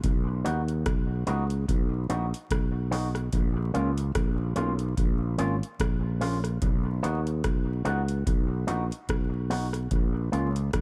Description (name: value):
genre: roots reggae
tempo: 73 BPM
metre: 4/4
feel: swing 57% on 16ths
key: unclear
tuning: A4 = 440 Hz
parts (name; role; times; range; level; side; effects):
- sustaining fretless electric bass; bass; 0.0-10.8 s; Ab1 to D#2; -30 LUFS; equal; none
- booming analog drum machine; drums; 0.0-10.8 s; hi-hat, kick drum, rim click; -31 LUFS; equal; dub echo
- electric guitar with an envelope filter; accompaniment; 0.4-10.5 s; Bb3 to F#4; -35 LUFS; equal; tape echo
room: little or no reverb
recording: vinyl crackle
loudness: -28 LUFS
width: mono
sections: 0.0-10.8 A section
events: none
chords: 0.0 B; 3.3 Bbm; 6.6 B; 9.9 Bbm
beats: | 0.04 0.86 1.68 2.51 | 3.33 4.15 4.97 5.80 | 6.62 7.44 8.27 9.09 | 9.91 10.73